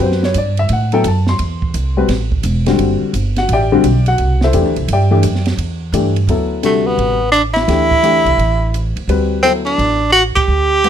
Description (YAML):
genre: modal jazz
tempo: 172 BPM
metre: 4/4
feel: swing 65% on 8ths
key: D mixolydian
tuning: A4 = 440 Hz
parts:
  - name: warm baby grand piano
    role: accompaniment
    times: 0.0-10.9 s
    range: C3 to C6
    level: -16 LUFS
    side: left 4 dB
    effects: none
  - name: upright bass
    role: bass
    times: 0.0-10.9 s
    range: E1 to A2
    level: -16 LUFS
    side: right 1 dB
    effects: none
  - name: compact cocktail drum kit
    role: drums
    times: 0.1-10.9 s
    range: hi-hat, kick drum, ride cymbal, snare drum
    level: -25 LUFS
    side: right 3 dB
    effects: none
  - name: breathy tenor saxophone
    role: melody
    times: 6.7-10.9 s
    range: A3 to G4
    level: -12 LUFS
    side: right 1 dB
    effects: none
room: light reverb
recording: close, detailed microphones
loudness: -12 LUFS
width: side -9 dB against mid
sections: 0.0-6.3 A section; 6.3-10.9 B section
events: band accent 10.3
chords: 0.0 D9sus4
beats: 0.00 0.35 | 0.70 1.05 1.40 1.75 | 2.10 2.45 2.80 3.15 | 3.49 3.84 4.19 4.54 | 4.89 5.24 5.59 5.94 | 6.29 6.64 6.99 7.34 | 7.69 8.04 8.39 8.74 | 9.09 9.44 9.79 10.14 | 10.49 10.84